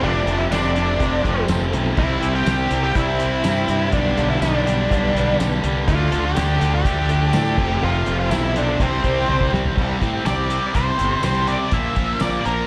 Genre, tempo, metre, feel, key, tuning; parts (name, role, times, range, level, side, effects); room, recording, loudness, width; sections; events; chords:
classic rock; 123 BPM; 4/4; straight; C major; A4 = 440 Hz
octave-fuzz lead guitar; melody; 0.0-12.7 s; C4 to E5; -25 LUFS; equal; distortion, slapback echo
tonewheel organ; sustained chords; 0.0-12.7 s; E3 to C5; -34 LUFS; equal
distorted electric guitar; riff; 0.0-12.7 s; F2 to D4; -26 LUFS; equal; overdrive
overdriven semi-hollow guitar; riff; 0.0-9.8 s; F2 to D4; -32 LUFS; equal
fuzz fingered electric bass; bass; 0.0-12.6 s; F1 to A2; -24 LUFS; equal; overdrive
cloth-damped thuddy drum kit; drums; 0.3-12.6 s; crash cymbal, hi-hat, kick drum, snare drum, tambourine, toms; -27 LUFS; equal
light reverb, small room ambience; live gig heard through the venue's PA, club reverb; -20 LUFS; mono
0.0-9.8 A section; 9.8-12.7 B section
drum fill 9.3-9.8; lead electric guitar solo 9.8-12.7
0.0 F; 2.0 C; 3.9 G/B; 5.9 Dm; 7.6 F; 8.8 C; 11.7 Bb